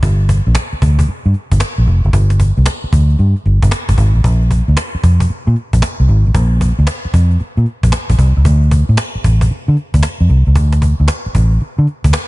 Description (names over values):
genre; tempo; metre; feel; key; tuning
R&B, new jack swing; 114 BPM; 4/4; swing 66% on 16ths; G minor; A4 = 440 Hz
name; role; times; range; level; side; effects
vintage muted fingered electric bass; bass; 0.0-12.1 s; F1 to D3; -10 LUFS; equal; none
cajon; drums; 0.0-12.3 s; none; -19 LUFS; equal; none
room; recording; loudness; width
little or no reverb; nothing above 10.9 kHz; -11 LUFS; side -20 dB against mid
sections
0.0-12.3 A section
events
none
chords
none